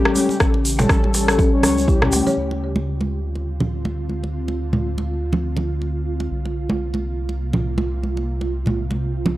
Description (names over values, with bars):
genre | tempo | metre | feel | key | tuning
afro house | 122 BPM | 4/4 | swing 58% on 16ths | D minor | A4 = 439 Hz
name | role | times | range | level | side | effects
ethereal airy pad | sustained chords | 0.1-9.4 s | C3 to G4 | -28 LUFS | right 2 dB | ensemble chorus, built-in reverb, sidechain pumping
mellow synth brass | stabs | 0.0-2.3 s | G3 to C#5 | -22 LUFS | left 2 dB | chorus, sidechain pumping, tape echo
afro-pop drum kit | drums | 0.1-8.7 s | crash cymbal, hi-hat, rim click, toms | -22 LUFS | equal | low-pass filter on snare, low-pass filter on hats, low-pass filter on toms, low-pass filter on cymbals, low-pass filter on room
folk marimba with medium mallets | arpeggios | 0.2-2.4 s | A3 to C#5 | -23 LUFS | left 3 dB | sidechain pumping, tape echo
congas | percussion | 0.2-9.4 s | none | -25 LUFS | right 2 dB | none
egg shaker | percussion | 0.2-2.4 s | none | -28 LUFS | right 2 dB | none
round analog bass | bass | 0.4-9.4 s | A1 to D2 | -25 LUFS | equal | sidechain pumping
electronic kick drum | drums | 0.4-2.0 s | none | -18 LUFS | equal | none
darbuka | percussion | 0.8-2.2 s | none | -30 LUFS | left 2 dB | none
room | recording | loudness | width
little or no reverb | dry, gritty hardware recording | -18 LUFS | side -16 dB against mid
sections
0.0-2.4 A section; 2.4-9.4 B section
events
none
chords
0.0 A7; 2.4 Dm7; 6.3 C7sus4